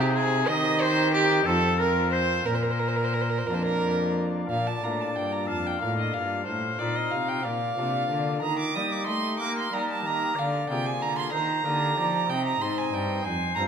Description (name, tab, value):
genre	classical, baroque-style sonata movement with continuo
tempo	62 BPM (dotted quarters)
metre	6/8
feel	straight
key	Bb major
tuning	A4 = 440 Hz
part	clear oboe	melody	0.0-13.7 s	G4 to F5	-31 LUFS	left 7 dB	none
part	rich violin	second line	0.0-13.6 s	G4 to Eb6	-27 LUFS	right 4 dB	none
part	pipe organ, cornet	accompaniment	0.0-13.7 s	F2 to C5	-31 LUFS	left 2 dB	none
part	rich cello	bass	0.0-13.7 s	F2 to Bb3	-29 LUFS	right 1 dB	none
room	wet recital hall reverb, RT60 1.4 s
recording	minimal, uncompressed stereo recording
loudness	-23 LUFS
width	side -7 dB against mid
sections	0.0-4.5 A section; 4.5-13.7 B section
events	none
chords	0.5 Cm/Eb; 1.5 F5; 2.5 Bb; 6.5 F7/A; 7.4 Bb; 8.4 Eb; 10.4 Bb7; 11.3 Eb; 12.3 Cm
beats	| 0.49 1.47 | 2.47 3.49 | 4.50 5.49 | 6.47 7.45 | 8.42 9.39 | 10.37 11.33 | 12.29 13.26